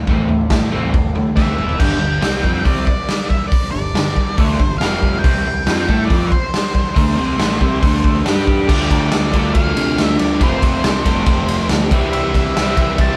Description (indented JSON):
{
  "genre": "garage rock duo or trio",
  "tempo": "139 BPM",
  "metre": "4/4",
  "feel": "straight",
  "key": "unclear",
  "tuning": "A4 = 440 Hz",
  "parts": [
    { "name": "crunchy overdriven guitar", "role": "riff", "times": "0.0-13.2 s", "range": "F2 to A4", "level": "-22 LUFS", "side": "equal", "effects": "spring reverb" },
    { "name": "growling picked electric bass", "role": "bass", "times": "0.1-13.2 s", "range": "E1 to C3", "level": "-25 LUFS", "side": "equal", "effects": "overdrive" },
    { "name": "raw garage drum kit", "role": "drums", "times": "0.1-13.1 s", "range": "crash cymbal, hi-hat, kick drum, ride cymbal, snare drum, toms", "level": "-19 LUFS", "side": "equal", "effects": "none" },
    { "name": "octave-fuzz lead guitar", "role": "melody", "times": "1.4-13.2 s", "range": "C5 to A5", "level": "-26 LUFS", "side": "equal", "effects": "distortion" }
  ],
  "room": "moderate stone room reverb, RT60 1.1 s",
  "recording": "band playing live in one room",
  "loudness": "-16 LUFS",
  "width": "mono",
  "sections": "0.0-1.8 A section; 1.8-8.7 B section; 8.7-13.2 C section",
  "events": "drum fill 1.4-1.8",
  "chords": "0.0 Am; 1.6 E5; 1.8 G5; 4.8 F5; 5.2 C5; 7.8 D5; 8.3 G5; 8.7 Dm; 10.4 F; 11.9 C",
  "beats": "| 0.08 0.51 0.94 1.37 | 1.80 2.24 2.67 3.10 | 3.53 3.96 4.39 4.82 | 5.25 5.68 6.11 6.54 | 6.97 7.40 7.83 8.26 | 8.69 9.12 9.55 9.98 | 10.41 10.84 11.27 11.70 | 12.13 12.56 12.99"
}